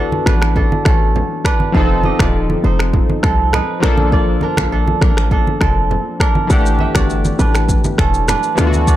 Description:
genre	afrobeats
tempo	101 BPM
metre	4/4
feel	straight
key	unclear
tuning	A4 = 436 Hz
part	warm analog keys	accompaniment	0.0-9.0 s	E3 to A4	-20 LUFS	left 3 dB	chorus
part	kora	riff	0.0-9.0 s	C4 to F#5	-20 LUFS	right 4 dB	tape echo
part	short 808-style bass	bass	0.0-9.0 s	Eb1 to D2	-16 LUFS	equal	none
part	congas	percussion	0.1-8.9 s	none	-23 LUFS	right 2 dB	none
part	afro-pop drum kit	drums	0.3-9.0 s	finger snaps, kick drum, rim click, shaker	-17 LUFS	equal	none
room	light reverb, digital ambience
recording	dark, warm production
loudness	-12 LUFS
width	side -13 dB against mid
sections	0.0-9.0 A section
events	break 0.0-6.5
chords	0.0 D69; 1.7 F7; 3.8 Bbmaj7; 6.5 A7sus4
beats	0.56 1.15 | 1.75 2.34 2.93 3.53 | 4.12 4.72 5.31 5.90 | 6.50 7.09 7.69 8.28 | 8.87

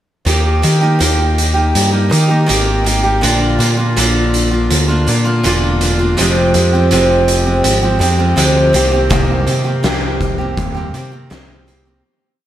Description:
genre	quiet-loud alternative rock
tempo	82 BPM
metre	4/4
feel	straight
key	C minor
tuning	A4 = 440 Hz
part	picked steel-string acoustic guitar	arpeggios	0.2-12.0 s	F2 to G4	-14 LUFS	right 1 dB	none
part	overdriven picked electric bass	bass	0.3-12.0 s	E1 to Eb3	-15 LUFS	left 1 dB	none
part	oversized low-tuned drum kit	drums	0.3-11.8 s	hi-hat, kick drum, snare drum	-19 LUFS	right 1 dB	none
room	wet lush hall reverb, RT60 2.8 s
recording	big arena sound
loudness	-11 LUFS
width	side -12 dB against mid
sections	0.3-12.0 verse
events	fade-out 9.1-12.0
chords	0.3 Eb; 3.2 Bb; 6.2 Fmadd9; 8.7 Cm7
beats	| 0.26 1.00 1.75 2.49 | 3.23 3.97 4.70 5.44 | 6.17 6.91 7.64 8.37 | 9.11 9.84 10.57 11.30

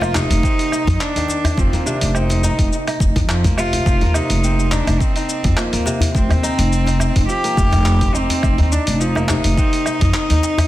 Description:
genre	organic downtempo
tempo	105 BPM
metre	4/4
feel	swing 54% on 16ths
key	unclear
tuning	A4 = 440 Hz
part	warm cello	melody	0.0-10.7 s	Bb3 to G4	-21 LUFS	equal	ping-pong delay
part	kora	arpeggios	0.0-10.7 s	C3 to Eb4	-24 LUFS	equal	ping-pong delay
part	upright bass	bass	0.0-10.4 s	F1 to F2	-18 LUFS	equal	sidechain pumping
part	dusty soul sampler-style drum kit	drums	0.0-10.7 s	cabasa, handclaps, hi-hat, woodblock	-25 LUFS	equal	overdrive, studio reverb
part	djembe	percussion	0.0-10.7 s	none	-23 LUFS	left 1 dB	none
part	electronic kick drum	drums	0.4-10.1 s	none	-19 LUFS	equal	overdrive, studio reverb
room	studio reverb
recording	dense, heavily limited modern master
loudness	-14 LUFS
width	side -15 dB against mid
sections	0.0-10.7 A section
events	none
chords	0.0 F7(no3)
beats	0.43 1.00 | 1.57 2.15 2.72 3.29 | 3.86 4.43 5.00 5.57 | 6.14 6.72 7.29 7.86 | 8.43 9.00 9.57 10.14

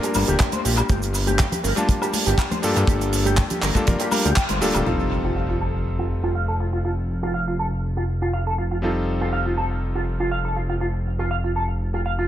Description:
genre	nu-disco, nu disco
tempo	121 BPM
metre	4/4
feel	straight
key	unclear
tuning	A4 = 439 Hz
part	bright electric grand piano	accompaniment	0.0-12.3 s	G3 to A5	-26 LUFS	left 2 dB	sidechain pumping, tape echo
part	electric guitar with an envelope filter	riff	0.0-12.2 s	F4 to G5	-27 LUFS	right 2 dB	analog chorus, low-pass filter, tape echo
part	damped 70s drum kit	drums	0.0-4.8 s	cabasa, handclaps, hi-hat, woodblock	-26 LUFS	right 1 dB	studio reverb, tape echo
part	congas	percussion	0.1-4.6 s	none	-31 LUFS	left 4 dB	tape echo
part	fat analog bass	bass	0.2-12.3 s	D1 to G2	-24 LUFS	equal	sidechain pumping
part	kick drum	drums	0.4-4.5 s	none	-20 LUFS	equal	studio reverb
part	impact	sound effects	4.9-6.8 s	none	-31 LUFS	equal	none
room	light reverb, small room ambience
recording	echo-heavy mix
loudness	-20 LUFS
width	side -12 dB against mid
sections	0.0-4.9 A section; 4.9-12.3 B section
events	band accent 4.4; impact 4.9-6.8; filter sweep on clean electric guitar 4.9-12.3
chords	0.0 Gm7; 4.9 F7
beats	0.40 | 0.90 1.39 1.89 2.39 | 2.88 3.38 3.87 4.37 | 4.87 5.36 5.86 6.35 | 6.85 7.34 7.84 8.34 | 8.83 9.33 9.82 10.32 | 10.82 11.31 11.81

